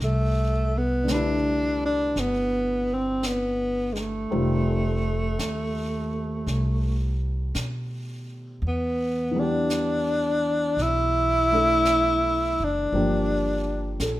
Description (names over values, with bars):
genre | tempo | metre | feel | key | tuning
jazz ballad | 56 BPM | 4/4 | swing 69% on 8ths | C major | A4 = 438 Hz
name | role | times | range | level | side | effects
breathy tenor saxophone | melody | 0.0-14.0 s | Ab3 to E4 | -24 LUFS | equal | none
upright bass | bass | 0.0-14.2 s | F1 to B2 | -28 LUFS | equal | none
jazz brush drum kit | drums | 0.0-14.2 s | brushed snare drum, hi-hat, snare drum | -37 LUFS | equal | none
warm grand piano | accompaniment | 1.0-14.2 s | C3 to C5 | -30 LUFS | left 1 dB | none
room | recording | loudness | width
light reverb | minimal, uncompressed stereo recording | -22 LUFS | side -15 dB against mid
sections
0.0-14.2 A section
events
none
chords
0.0 Cmaj13; 4.3 F9; 8.6 Em7; 12.9 Gm7